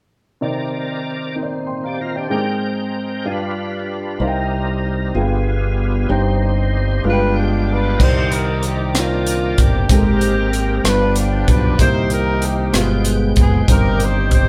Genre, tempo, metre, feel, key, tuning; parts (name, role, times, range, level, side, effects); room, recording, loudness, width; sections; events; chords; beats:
slow gospel; 63 BPM (dotted quarters); 6/8; straight; C minor; A4 = 440 Hz
dark upright piano; accompaniment; 0.4-14.5 s; G2 to C6; -25 LUFS; equal
tonewheel organ; sustained chords; 0.4-14.5 s; Eb3 to G5; -26 LUFS; equal; slow rotary speaker, overdrive, chorus vibrato
modern bright fingered electric bass; bass; 4.2-14.5 s; F#1 to C2; -22 LUFS; equal
warm horn section; melody; 7.1-14.5 s; Ab3 to C5; -23 LUFS; equal
crisp fusion drum kit; drums; 8.0-14.5 s; crash cymbal, hi-hat, kick drum, rim click; -19 LUFS; equal
moderate studio reverb, RT60 0.7 s; band playing live in one room; -18 LUFS; mono
0.4-8.0 A section; 8.0-14.5 B section
tonewheel organ fill 7.1-8.0
0.4 Cm9; 2.3 Abmaj9; 3.3 G7; 4.2 Cm7; 5.2 G7b9; 6.1 Cm/G; 7.1 G7b9; 8.0 Cm9; 9.9 Abmaj9; 10.8 G7; 11.8 Cm7; 12.7 G7b9; 13.7 Cm/G
| 0.42 1.37 | 2.31 3.26 | 4.21 5.16 | 6.10 7.05 | 8.00 8.95 | 9.89 10.84 | 11.79 12.73 | 13.68